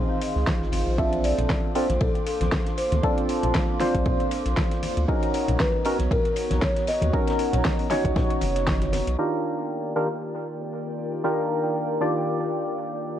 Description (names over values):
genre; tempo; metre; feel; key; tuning
deep house; 117 BPM; 4/4; swing 56% on 16ths; unclear; A4 = 440 Hz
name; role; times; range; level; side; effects
hollow soft pad; sustained chords; 0.0-13.2 s; Eb3 to A#5; -34 LUFS; equal; chorus, sidechain pumping
percussive organ stab; stabs; 0.0-13.2 s; Eb3 to D5; -26 LUFS; equal; analog chorus, analog delay
warbly tape-like pad; texture; 0.0-13.2 s; Eb3 to D6; -34 LUFS; right 1 dB; chorus, built-in reverb, phaser, sidechain pumping
damped 70s drum kit; drums; 0.2-13.2 s; hi-hat, ride cymbal, snare drum; -42 LUFS; left 1 dB; sidechain pumping on cymbals, high-pass filter on cymbals, low-pass filter on cymbals, vintage 12-bit sampler grit, sidechain pumping on hats, high-pass filter on hats, low-pass filter on hats, high-pass filter on snare, low-pass filter on snare, high-pass filter on room, low-pass filter on room
deep house drum kit; drums; 0.2-9.2 s; hi-hat, snare drum; -31 LUFS; equal; overdrive, vintage 12-bit sampler grit
round analog bass; bass; 0.4-9.2 s; F#1 to D#2; -25 LUFS; equal; sidechain pumping
electronic kick drum; drums; 0.5-8.8 s; none; -26 LUFS; equal; overdrive, vintage 12-bit sampler grit
congas; percussion; 0.7-9.0 s; none; -32 LUFS; left 1 dB; none
marimba with soft mallets; melody; 1.0-8.4 s; A4 to Fb5; -30 LUFS; left 1 dB; tape echo
room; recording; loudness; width
light reverb, small room ambience; cassette tape; -22 LUFS; side -10 dB against mid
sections
0.0-9.2 A section; 9.2-13.2 B section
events
none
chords
0.0 Dbmaj9 (rootless); 1.0 Bbmaj9; 5.1 Bmaj9; 9.2 Ebmaj9